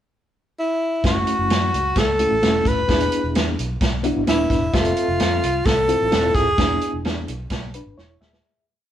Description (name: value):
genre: uptempo 1960s-style soul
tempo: 130 BPM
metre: 4/4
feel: straight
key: unclear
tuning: A4 = 439 Hz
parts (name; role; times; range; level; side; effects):
- clear tenor saxophone; melody; 0.6-7.0 s; E4 to B4; -20 LUFS; equal; none
- reed electric piano; accompaniment; 1.0-8.7 s; A3 to E5; -24 LUFS; left 1 dB; fast tremolo
- vintage muted fingered electric bass; bass; 1.0-8.4 s; D#1 to F#2; -26 LUFS; equal; none
- vintage drum kit; drums; 1.0-8.4 s; hi-hat, kick drum, snare drum; -22 LUFS; right 1 dB; none
room: moderate studio reverb, RT60 0.9 s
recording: band playing live in one room, cassette tape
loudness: -17 LUFS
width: side -10 dB against mid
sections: 0.0-1.0 pickup bar; 1.0-8.4 verse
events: fade-out 6.6-8.4; drum fill 8.0-8.4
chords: 0.0 N.C.; 1.0 F#m7; 2.9 E7; 4.7 Fmaj7; 6.6 E7